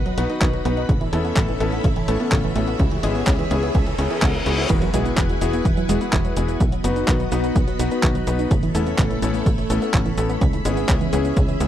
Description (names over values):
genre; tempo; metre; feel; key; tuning
italo disco; 126 BPM; 4/4; straight; E major; A4 = 440 Hz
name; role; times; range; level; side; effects
string machine, full ensemble; sustained chords; 0.0-11.7 s; A3 to B5; -28 LUFS; equal; ensemble chorus
analog pluck; arpeggios; 0.0-11.7 s; C#3 to E4; -27 LUFS; right 3 dB; chorus, phaser, tape echo
tight sequencer bass; bass; 0.0-11.7 s; E1 to E2; -24 LUFS; equal; none
riser, reverse cymbal and impact; sound effects; 0.9-6.6 s; none; -31 LUFS; equal; none
clean 12-bit digital drum machine; drums; 0.1-11.7 s; cabasa, crash cymbal, handclaps, hi-hat; -27 LUFS; equal; none
clear electric grand piano; stabs; 0.2-11.7 s; B3 to B4; -27 LUFS; left 6 dB; tape echo
electronic kick drum; drums; 0.4-11.5 s; none; -22 LUFS; equal; none
room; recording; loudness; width
little or no reverb; dry, close 1970s-style studio recording; -18 LUFS; side -11 dB against mid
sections
0.0-4.7 A section; 4.7-11.7 B section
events
riser 0.9-4.7; reverse cymbal 3.7-4.7; impact 4.7-6.6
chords
0.0 B; 0.9 Aadd9; 2.8 C#m7; 4.7 Eadd9; 6.6 B; 8.5 Aadd9; 10.4 C#m7